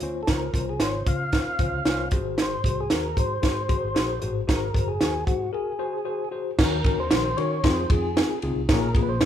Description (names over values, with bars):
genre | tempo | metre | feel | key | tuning
uptempo 1960s-style soul | 114 BPM | 4/4 | straight | unclear | A4 = 440 Hz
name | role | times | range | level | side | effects
tine electric piano | accompaniment | 0.0-9.3 s | Ab2 to Db5 | -29 LUFS | left 5 dB | medium stereo tremolo, tube saturation
vintage muted fingered electric bass | bass | 0.0-9.3 s | Gb1 to Eb3 | -31 LUFS | equal | none
compact cocktail drum kit | drums | 0.0-9.3 s | crash cymbal, hi-hat, kick drum, ride cymbal, snare drum | -23 LUFS | right 1 dB | none
tonewheel organ | melody | 0.2-9.3 s | Gb4 to F5 | -29 LUFS | equal | overdrive, slow rotary speaker
room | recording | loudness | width
light reverb | band playing live in one room | -22 LUFS | side -10 dB against mid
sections
0.0-6.6 A section; 6.6-9.3 B section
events
break 5.5-6.6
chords
0.0 Dbmaj7; 2.1 Ab7; 6.6 Ebm7; 7.6 Fm7; 8.7 Bbm7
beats
| 0.28 0.81 1.33 1.86 | 2.38 2.91 3.43 3.96 | 4.49 5.01 5.54 6.06 | 6.59 7.11 7.64 8.16 | 8.69 9.21